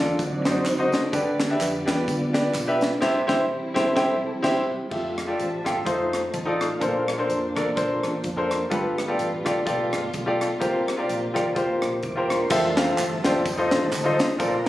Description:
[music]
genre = uptempo gospel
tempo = 127 BPM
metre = 4/4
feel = swing 57% on 8ths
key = F major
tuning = A4 = 440 Hz
[part]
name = warm concert grand piano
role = accompaniment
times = 0.0-14.7 s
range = G2 to G5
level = -23 LUFS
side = left 1 dB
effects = none
[part]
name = mellow tonewheel organ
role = sustained chords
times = 0.0-14.7 s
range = Eb3 to D6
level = -29 LUFS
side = right 1 dB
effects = fast rotary speaker, chorus vibrato
[part]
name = warm symphonic string section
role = sustained chords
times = 0.0-12.5 s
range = D3 to E5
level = -38 LUFS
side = equal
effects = none
[part]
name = hollow-body short-scale fingered electric bass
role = bass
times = 0.0-14.7 s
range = E1 to F#2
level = -35 LUFS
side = equal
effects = none
[part]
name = tight funk drum kit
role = drums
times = 0.2-14.7 s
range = crash cymbal, hi-hat, kick drum, ride cymbal, rim click, snare drum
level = -28 LUFS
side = equal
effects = none
[part]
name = tambourine and handclaps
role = percussion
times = 0.2-2.9, 12.5-14.5 s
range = none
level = -36 LUFS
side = right 2 dB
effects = none
[sound]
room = moderate large studio reverb, RT60 1.2 s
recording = recorded on a phone in the room, club reverb, compression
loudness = -21 LUFS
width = side -15 dB against mid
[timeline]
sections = 0.0-4.9 A section; 4.9-12.5 B section; 12.5-14.7 C section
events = tonewheel organ solo 0.0-4.9, 12.5-14.7; band accent 3.0-4.9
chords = 0.2 D7b9; 1.1 G/D; 3.0 C; 4.9 Fmaj9; 5.9 F7; 6.8 Bbmaj9; 8.7 G9; 10.6 C7sus4; 13.5 F7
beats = 0.19 0.66 | 1.14 1.61 2.08 2.55 | 3.03 3.50 3.97 4.45 | 4.92 5.39 5.87 6.34 | 6.82 7.29 7.76 8.24 | 8.71 9.19 9.66 10.14 | 10.61 11.09 11.56 12.03 | 12.51 12.98 13.45 13.92 | 14.39

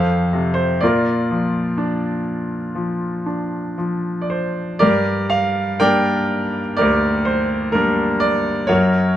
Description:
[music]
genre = classical, lyrical solo piano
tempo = 56-64 BPM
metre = 4/4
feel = rubato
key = unclear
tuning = A4 = 440 Hz
[part]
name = bright grand piano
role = solo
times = 0.0-9.2 s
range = D2 to G5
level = -16 LUFS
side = equal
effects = none
[sound]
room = light reverb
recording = close, detailed microphones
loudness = -17 LUFS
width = side -12 dB against mid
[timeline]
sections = 0.0-4.8 A section; 4.8-9.2 B section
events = none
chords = 0.0 F; 0.8 Bb; 4.8 Gm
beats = | 0.81 1.78 2.76 3.79 | 4.82 5.81 6.80 7.76 | 8.70

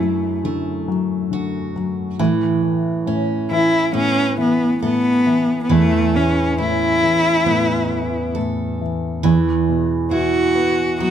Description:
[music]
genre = acoustic folk-pop ballad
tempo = 68 BPM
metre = 4/4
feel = straight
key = A major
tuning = A4 = 441 Hz
[part]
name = rich cello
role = melody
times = 0.0-11.1 s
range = A3 to F#4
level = -17 LUFS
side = left 1 dB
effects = none
[part]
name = dark grand piano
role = accompaniment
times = 0.0-11.1 s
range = E2 to B3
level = -22 LUFS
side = left 5 dB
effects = none
[part]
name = picked steel-string acoustic guitar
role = arpeggios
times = 0.0-11.1 s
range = E3 to A4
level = -21 LUFS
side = right 6 dB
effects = none
[sound]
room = light reverb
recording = close, detailed microphones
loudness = -16 LUFS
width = side -9 dB against mid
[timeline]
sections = 0.0-11.1 A section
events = none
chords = 0.0 Dadd9/F#; 2.2 Aadd9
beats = 0.45 1.32 | 2.19 3.07 3.94 4.82 | 5.70 6.58 7.46 8.35 | 9.24 10.12 11.01

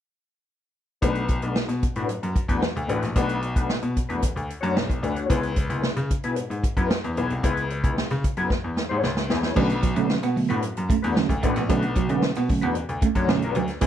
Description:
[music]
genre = funk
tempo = 112 BPM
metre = 4/4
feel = straight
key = B dorian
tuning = A4 = 440 Hz
[part]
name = mellow electric guitar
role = accompaniment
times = 1.0-13.9 s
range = G#3 to C#5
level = -28 LUFS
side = left 4 dB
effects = wah, spring reverb
[part]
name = bright baby grand piano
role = bass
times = 1.0-13.9 s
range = A1 to C#3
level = -27 LUFS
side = left 1 dB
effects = none
[part]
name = swinging big-band drum kit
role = drums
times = 1.0-13.9 s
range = crash cymbal, hi-hat, kick drum, snare drum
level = -25 LUFS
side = equal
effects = none
[part]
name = tine electric piano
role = stabs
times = 9.6-13.9 s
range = D3 to D4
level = -25 LUFS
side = right 6 dB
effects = medium stereo tremolo
[part]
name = clean electric guitar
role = riff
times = 9.7-13.7 s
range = F#3 to B3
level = -28 LUFS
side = right 9 dB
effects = none
[sound]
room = small room ambience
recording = none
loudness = -22 LUFS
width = side -10 dB against mid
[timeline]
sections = 1.0-9.6 A section; 9.6-13.9 B section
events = drum fill 8.5-9.6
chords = 1.0 Bm7; 5.3 C#m7; 9.6 Bm7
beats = | 1.02 1.55 2.09 2.62 | 3.16 3.69 4.23 4.76 | 5.30 5.83 6.37 6.90 | 7.43 7.97 8.50 9.04 | 9.57 10.10 10.63 11.16 | 11.70 12.23 12.76 13.29 | 13.82

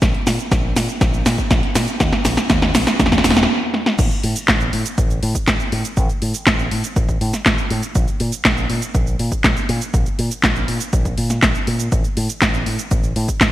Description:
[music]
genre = italo disco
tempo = 121 BPM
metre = 4/4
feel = straight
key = unclear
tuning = A4 = 440 Hz
[part]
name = fingered electric bass with an envelope filter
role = bass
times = 0.0-13.5 s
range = E1 to Bb2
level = -22 LUFS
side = equal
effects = none
[part]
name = electronic kick drum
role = drums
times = 0.0-13.5 s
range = none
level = -20 LUFS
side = equal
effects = studio reverb
[part]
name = house drum kit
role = drums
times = 0.0-13.5 s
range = cabasa, crash cymbal, handclaps, hi-hat, snare drum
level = -18 LUFS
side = equal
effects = studio reverb
[sound]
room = moderate lush hall reverb, RT60 1.8 s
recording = bright 1980s-style digital production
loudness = -15 LUFS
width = side -14 dB against mid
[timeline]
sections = 0.0-4.0 A section; 4.0-13.5 B section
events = drum fill 0.0-3.5, 3.7; stop 3.5-4.0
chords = none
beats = | 0.02 0.52 1.01 1.51 | 2.00 2.50 3.00 3.49 | 3.99 4.48 4.98 5.47 | 5.97 6.47 6.96 7.46 | 7.95 8.45 8.95 9.44 | 9.94 10.43 10.93 11.42 | 11.92 12.42 12.91 13.41

